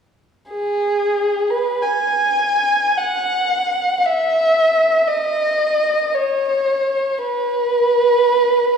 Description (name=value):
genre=classical, free, expressive piece for unaccompanied violin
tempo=42-61 BPM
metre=4/4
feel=rubato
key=unclear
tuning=A4 = 436 Hz
part: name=dark violin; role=solo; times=0.5-8.8 s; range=G#4 to G#5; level=-15 LUFS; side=equal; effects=none
room=wet concert hall reverb, RT60 1.9 s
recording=heard from further back in the room, small room ambience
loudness=-15 LUFS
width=side -6 dB against mid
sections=0.5-8.8 A section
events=none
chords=none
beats=| 0.51 1.83 2.99 4.06 | 5.07 6.14 7.19 8.24